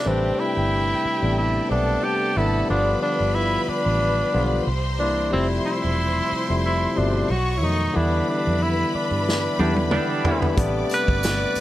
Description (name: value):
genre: lush 1970s-style soul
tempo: 91 BPM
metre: 4/4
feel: swing 54% on 16ths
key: A minor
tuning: A4 = 439 Hz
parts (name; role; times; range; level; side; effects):
- warm tenor saxophone; melody; 0.0-11.6 s; C4 to B4; -24 LUFS; equal; none
- rich studio string section; second line; 0.0-11.6 s; G4 to D6; -30 LUFS; left 2 dB; tape echo
- barky tine electric piano; accompaniment; 0.0-11.6 s; B2 to B4; -25 LUFS; left 2 dB; none
- string machine, violins; sustained chords; 0.0-11.6 s; G4 to B5; -36 LUFS; right 1 dB; ensemble chorus
- vintage muted fingered electric bass; bass; 0.1-11.6 s; E1 to G2; -24 LUFS; right 1 dB; none
- vintage drum kit; drums; 9.3-11.6 s; hi-hat, kick drum, snare drum, toms; -24 LUFS; right 1 dB; none
- warm horn section; stabs; 9.6-10.5 s; G3 to D4; -27 LUFS; right 4 dB; none
- tambourine; percussion; 10.9-11.6 s; none; -36 LUFS; right 8 dB; none
room: light reverb, small room ambience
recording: none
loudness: -19 LUFS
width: side -14 dB against mid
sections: 0.1-11.6 A section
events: band accent 8.0-10.6; drum fill 9.3-10.6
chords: 0.1 Am11; 2.7 G7; 4.7 C7; 5.3 Fmaj9; 7.3 B7; 8.0 Em7; 10.6 Am11